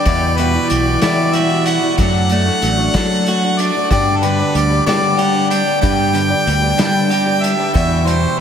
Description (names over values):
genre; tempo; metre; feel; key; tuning
folk rock and heartland rock; 62 BPM (dotted quarters); 6/8; straight; G major; A4 = 440 Hz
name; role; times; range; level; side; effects
clear harmonica; melody; 0.0-8.4 s; A4 to G5; -18 LUFS; left 1 dB; analog delay
picked twelve-string acoustic guitar; accompaniment; 0.0-8.4 s; E2 to G4; -20 LUFS; left 5 dB; none
electric guitar at the edge of break-up; riff; 0.0-8.4 s; E2 to G4; -20 LUFS; right 8 dB; none
fingered electric bass; bass; 0.1-8.2 s; A1 to G3; -18 LUFS; left 1 dB; none
vintage drum kit; drums; 0.1-8.2 s; hi-hat, kick drum, snare drum; -23 LUFS; equal; none
room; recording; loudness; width
moderate huge ambient reverb, RT60 8.0 s; dreamy mix soaked in reverb; -13 LUFS; side -8 dB against mid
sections
0.0-8.4 A section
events
none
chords
0.1 Emadd9; 2.0 D; 3.9 G; 7.7 Emadd9